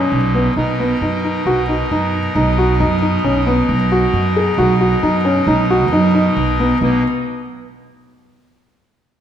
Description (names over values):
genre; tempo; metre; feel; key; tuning
contemporary instrumental, chamber music in an uneven meter; 134 BPM; 7/4; straight; B major; A4 = 440 Hz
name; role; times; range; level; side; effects
pipe organ, trumpet; sustained chords; 0.0-7.0 s; A#2 to A#4; -21 LUFS; equal; none
felt-muted upright piano; arpeggios; 0.0-7.0 s; B3 to G#4; -17 LUFS; left 1 dB; none
upright bass; bass; 0.0-7.0 s; B1 to F#2; -18 LUFS; right 2 dB; none
room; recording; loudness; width
wet concert hall reverb, RT60 1.9 s; none; -13 LUFS; side -9 dB against mid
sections
0.6-6.8 A section; 6.8-9.2 B section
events
none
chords
0.0 Bmaj7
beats
0.12 | 0.57 1.02 1.46 1.91 2.35 2.80 3.25 | 3.69 4.14 4.59 5.04 5.48 5.93 6.38 | 6.82